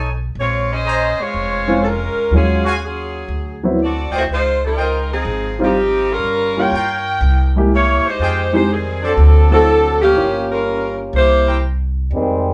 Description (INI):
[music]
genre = jazz, big band swing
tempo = 122 BPM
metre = 4/4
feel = swing 67% on 8ths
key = unclear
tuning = A4 = 440 Hz
[part]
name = warm trumpet section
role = stabs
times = 0.0-11.6 s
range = D4 to Bb5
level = -24 LUFS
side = equal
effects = none
[part]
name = upright bass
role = bass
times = 0.0-12.5 s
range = F1 to G2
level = -21 LUFS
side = equal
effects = none
[part]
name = clear saxophone section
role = melody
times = 0.4-11.6 s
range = Eb3 to G5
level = -19 LUFS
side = equal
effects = none
[part]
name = warm grand piano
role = accompaniment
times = 1.7-11.2 s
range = Gb3 to G4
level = -20 LUFS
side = equal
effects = none
[part]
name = muted trombone section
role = second line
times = 12.1-12.5 s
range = Eb3 to C4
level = -19 LUFS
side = equal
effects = none
[sound]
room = wet studio reverb, RT60 0.5 s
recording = band playing live in one room, nothing above 10.9 kHz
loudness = -16 LUFS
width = mono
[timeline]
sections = 0.0-12.1 A section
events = none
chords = 0.4 Bbm9; 2.3 Ebm11; 3.3 D13; 4.3 Dbmaj9#11; 6.2 Gm7b5; 7.2 C7b13; 8.2 Fm9; 9.2 D7; 10.2 Gm7b5; 11.1 C7